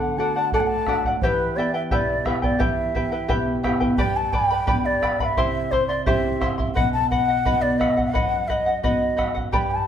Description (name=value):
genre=andean folk, Andean ensemble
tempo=86 BPM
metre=2/4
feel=straight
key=unclear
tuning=A4 = 440 Hz
part: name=mellow large quena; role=melody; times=0.0-9.9 s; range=B4 to A5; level=-24 LUFS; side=left 1 dB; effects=none
part: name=charango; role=accompaniment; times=0.0-9.9 s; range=E4 to C6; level=-25 LUFS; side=left 1 dB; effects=none
part: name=nylon-string guitar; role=accompaniment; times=0.0-9.9 s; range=F#2 to G4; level=-27 LUFS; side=right 1 dB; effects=none
part: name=bombo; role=percussion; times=0.5-9.7 s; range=none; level=-26 LUFS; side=equal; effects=none
room=wet stone room reverb, RT60 1.1 s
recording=band playing live in one room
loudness=-19 LUFS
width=side -9 dB against mid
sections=0.0-4.0 A section; 4.0-9.9 B section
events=none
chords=0.0 D; 1.2 Em; 4.0 G; 5.4 C; 6.8 B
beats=0.52 | 1.21 1.91 | 2.60 3.30 | 3.99 4.68 | 5.38 6.07 | 6.76 7.46 | 8.15 8.84 | 9.54